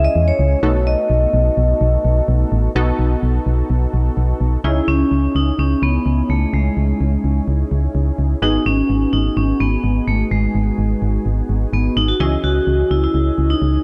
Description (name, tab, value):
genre	synth-pop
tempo	127 BPM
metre	4/4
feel	straight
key	C# minor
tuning	A4 = 440 Hz
part	vibraphone with hard mallets	melody	0.0-13.8 s	G#3 to D#5	-22 LUFS	equal	tape echo
part	funky polysynth comp	accompaniment	0.0-13.8 s	E3 to D#5	-27 LUFS	equal	chorus
part	solid FM bass	bass	0.0-13.8 s	G#1 to E2	-19 LUFS	equal	none
room	light reverb, small room ambience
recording	dark, warm production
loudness	-17 LUFS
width	mono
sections	0.0-2.8 A section; 2.8-4.6 B section; 4.6-13.8 C section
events	none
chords	0.0 C#m; 0.6 B7; 4.6 C#madd9; 8.4 G#m7; 12.2 C#madd9